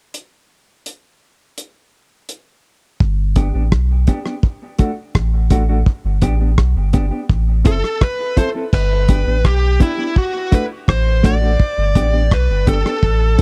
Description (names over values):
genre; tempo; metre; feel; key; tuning
roots reggae; 84 BPM; 4/4; straight; G major; A4 = 442 Hz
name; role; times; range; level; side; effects
cloth-damped thuddy drum kit; drums; 0.1-13.4 s; crash cymbal, hi-hat, kick drum, rim click; -17 LUFS; equal; none
warm sub bass; bass; 3.0-13.4 s; F#1 to B1; -18 LUFS; equal; none
mellow electric guitar; accompaniment; 3.4-13.4 s; A3 to A4; -24 LUFS; equal; dub echo
bluesy overdriven lead guitar; melody; 7.7-13.4 s; E4 to D5; -23 LUFS; equal; distortion, dub echo
room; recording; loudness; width
small room ambience; dry, close 1970s-style studio recording; -16 LUFS; mono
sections
0.1-3.0 A section; 3.0-8.7 B section; 8.7-13.4 C section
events
none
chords
0.1 N.C.; 3.0 G; 4.4 D; 5.9 G; 7.3 Am; 8.7 G; 10.2 D; 11.6 G